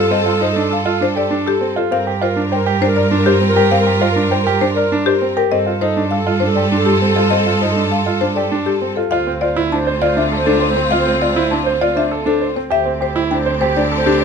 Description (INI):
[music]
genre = classical, minimalist pattern music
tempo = 100 BPM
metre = 3/4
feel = straight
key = D minor from 9.1 s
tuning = A4 = 440 Hz
[part]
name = buzzing marimba with medium mallets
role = melody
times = 0.0-14.2 s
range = G4 to A5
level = -19 LUFS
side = left 9 dB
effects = none
[part]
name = alto flute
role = second line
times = 0.0-14.2 s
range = A4 to C5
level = -22 LUFS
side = right 3 dB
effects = none
[part]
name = clear studio string section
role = sustained chords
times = 0.0-14.2 s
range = C4 to Bb4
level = -23 LUFS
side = left 2 dB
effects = none
[part]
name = warm baby grand piano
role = arpeggios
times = 0.0-14.2 s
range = C4 to C5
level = -19 LUFS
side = right 5 dB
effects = none
[part]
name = rich cello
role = bass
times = 0.0-14.2 s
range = D2 to G2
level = -20 LUFS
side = right 2 dB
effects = none
[sound]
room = little or no reverb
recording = close, detailed microphones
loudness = -14 LUFS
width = side -6 dB against mid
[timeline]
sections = 0.0-9.1 A section; 9.1-14.2 B section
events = none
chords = 0.0 F69/G; 1.9 Gm7; 5.5 F69/G; 9.1 Dm7; 12.7 Am7/D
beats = | 0.12 0.71 1.31 | 1.92 2.52 3.12 | 3.71 4.32 4.92 | 5.51 6.12 6.71 | 7.32 7.92 8.52 | 9.12 9.71 10.31 | 10.91 11.52 12.12 | 12.71 13.31 13.91